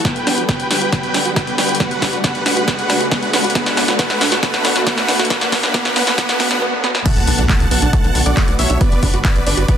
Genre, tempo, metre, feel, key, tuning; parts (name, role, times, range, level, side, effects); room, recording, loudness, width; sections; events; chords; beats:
uplifting trance; 137 BPM; 4/4; straight; B minor; A4 = 440 Hz
big supersaw lead; melody; 0.0-9.8 s; B4 to A5; -21 LUFS; right 1 dB; sidechain pumping, low-pass filter, digital delay
lush unison pad; sustained chords; 0.0-9.8 s; B2 to F#4; -24 LUFS; equal; chorus, sidechain pumping
wide unison pluck; arpeggios; 0.0-9.7 s; A3 to F#4; -24 LUFS; right 4 dB; vintage 12-bit sampler grit, sidechain pumping, digital delay
electronic kick drum; drums; 0.0-9.8 s; -18 LUFS; equal
punchy analog drum machine; drums; 0.0-9.8 s; crash cymbal, handclaps, hi-hat, snare drum; -19 LUFS; left 1 dB; high-pass filter on snare, high-pass filter on hats, high-pass filter on cymbals, high-pass filter on room
riser and impact; sound effects; 0.0-8.8 s; -24 LUFS; equal
tight sequencer bass; bass; 7.2-9.7 s; G1 to C#2; -18 LUFS; equal; tube saturation, sidechain pumping
moderate recital hall reverb, RT60 1.8 s; dense, heavily limited modern master, high-pass filter; -13 LUFS; side -9 dB against mid
0.0-7.1 A section; 7.1-9.8 B section
build-up 0.0-7.1; drum fill 0.0-6.6, 6.8; riser 0.0-6.6; filter sweep on synth arpeggio sound 0.0-7.1; drop 7.1-9.8; impact 7.1-8.8
0.0 Gmaj7; 1.8 Dmaj7; 3.6 Bm7; 5.3 Dmaj7; 7.1 Bm7; 8.8 Gmaj7
| 0.05 0.49 0.93 1.36 | 1.80 2.24 2.68 3.12 | 3.55 3.99 4.43 4.87 | 5.30 5.74 6.18 6.62 | 7.06 7.50 7.93 8.37 | 8.81 9.25 9.68